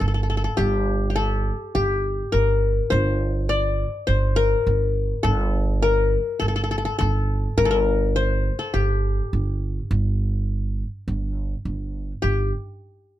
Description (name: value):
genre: Turkish makam ensemble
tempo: 103 BPM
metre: 4/4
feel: straight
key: G makam ussak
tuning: A4 = 442 Hz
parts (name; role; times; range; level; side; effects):
- qanun; melody; 0.0-12.5 s; G4 to D5; -23 LUFS; left 4 dB; none
- upright bass; bass; 0.0-12.5 s; G1; -22 LUFS; right 1 dB; none
room: little or no reverb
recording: close, detailed microphones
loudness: -20 LUFS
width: side -13 dB against mid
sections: 0.0-12.2 A section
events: none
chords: none